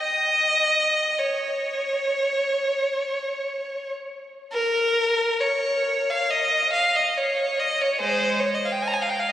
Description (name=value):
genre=classical, free, expressive piece for unaccompanied violin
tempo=39-74 BPM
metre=4/4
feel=rubato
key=unclear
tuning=A4 = 440 Hz
part: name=clear violin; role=solo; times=0.0-9.3 s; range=Ab3 to Bb5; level=-21 LUFS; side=equal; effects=none
room=wet church reverb, RT60 3.8 s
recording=recorded on a phone in the room, studio reverb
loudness=-20 LUFS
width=side -12 dB against mid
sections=0.0-4.5 A section; 4.5-9.3 B section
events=none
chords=none